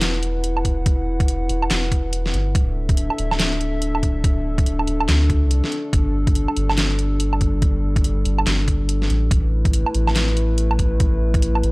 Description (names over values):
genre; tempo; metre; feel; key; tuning
deep dubstep; 142 BPM; 4/4; swing 61% on 16ths, half-time; unclear; A4 = 438 Hz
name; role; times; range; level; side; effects
dark analog pad; sustained chords; 0.0-11.7 s; G3 to F#5; -26 LUFS; left 1 dB; chorus
soft dub sub bass; bass; 0.0-11.7 s; D1 to D2; -20 LUFS; equal; transformer saturation
dubstep drum kit; drums; 0.0-11.7 s; handclaps, hi-hat, snare drum, woodblock; -24 LUFS; right 1 dB; overdrive
electronic kick drum; drums; 0.6-11.4 s; none; -19 LUFS; equal; none
room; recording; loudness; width
little or no reverb; dry, gritty hardware recording, cassette tape; -17 LUFS; side -24 dB against mid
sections
0.0-11.7 A section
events
none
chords
0.0 E5; 2.5 D5; 5.9 Gsus2; 9.3 Asus2